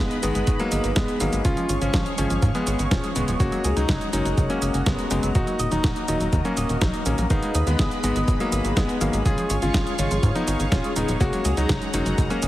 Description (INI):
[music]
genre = italo disco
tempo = 123 BPM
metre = 4/4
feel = straight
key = unclear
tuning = A4 = 440 Hz
[part]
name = clear electric grand piano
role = melody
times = 0.0-12.5 s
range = F3 to Ab4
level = -26 LUFS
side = left 1 dB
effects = ping-pong delay
[part]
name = lush unison pad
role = sustained chords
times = 0.0-12.5 s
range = Gb4 to Db6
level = -31 LUFS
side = equal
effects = chorus, phaser
[part]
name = electric guitar with an envelope filter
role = arpeggios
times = 0.0-12.5 s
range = Db3 to Eb5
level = -31 LUFS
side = right 2 dB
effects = ping-pong delay
[part]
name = bell-like tine electric piano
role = stabs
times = 0.0-12.5 s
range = Ab3 to F5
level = -30 LUFS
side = left 2 dB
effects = none
[part]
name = tight sequencer bass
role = bass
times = 0.0-12.5 s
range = Eb1 to Ab2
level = -25 LUFS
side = equal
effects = none
[part]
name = clean 12-bit digital drum machine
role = drums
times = 0.1-12.5 s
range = cabasa, hi-hat, snare drum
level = -29 LUFS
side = right 1 dB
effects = none
[part]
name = electronic kick drum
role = drums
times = 0.5-12.3 s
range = none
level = -24 LUFS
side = equal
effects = overdrive
[sound]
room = light reverb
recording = heavily compressed radio sound, multiband compression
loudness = -20 LUFS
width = side -15 dB against mid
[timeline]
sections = 0.0-12.5 A section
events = none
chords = 0.0 Abm; 1.4 Db/Ab; 3.4 Gbadd9; 5.4 Ebm; 7.3 Abm; 9.3 Db/Ab; 11.2 Gbadd9